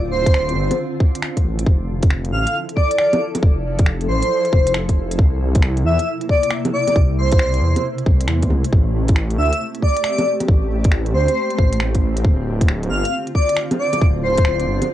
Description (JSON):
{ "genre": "future garage", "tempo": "136 BPM", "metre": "4/4", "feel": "swing 66% on 16ths", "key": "D minor", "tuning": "A4 = 440 Hz", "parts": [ { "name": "granular cloud pad", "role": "sustained chords", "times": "0.0-14.9 s", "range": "C3 to A4", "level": "-27 LUFS", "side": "equal", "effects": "built-in reverb, sidechain pumping, cassette tape" }, { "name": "swelling detuned saw bass", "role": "bass", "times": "0.0-14.8 s", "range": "D1 to E2", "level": "-20 LUFS", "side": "equal", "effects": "sidechain pumping" }, { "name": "airy dreamy lead", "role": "melody", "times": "0.1-14.9 s", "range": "C5 to F5", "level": "-21 LUFS", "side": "equal", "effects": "chorus, phaser, cassette tape, analog delay" }, { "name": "electronic kick drum", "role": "drums", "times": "0.3-14.4 s", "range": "none", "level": "-15 LUFS", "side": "equal", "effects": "studio ambience, cassette tape" }, { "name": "organic electronic drum kit", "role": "drums", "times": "0.3-14.9 s", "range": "bongos, finger snaps, hi-hat", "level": "-24 LUFS", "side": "right 1 dB", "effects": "studio ambience, cassette tape" } ], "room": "moderate booth ambience, RT60 0.2 s", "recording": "home recording on cassette", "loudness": "-15 LUFS", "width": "side -12 dB against mid", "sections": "0.0-1.7 A section; 1.7-14.9 A section", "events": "band accent 1.2", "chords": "0.0 Dm7; 1.7 Fmaj7; 5.2 C7; 8.7 Am7; 12.2 Dm7" }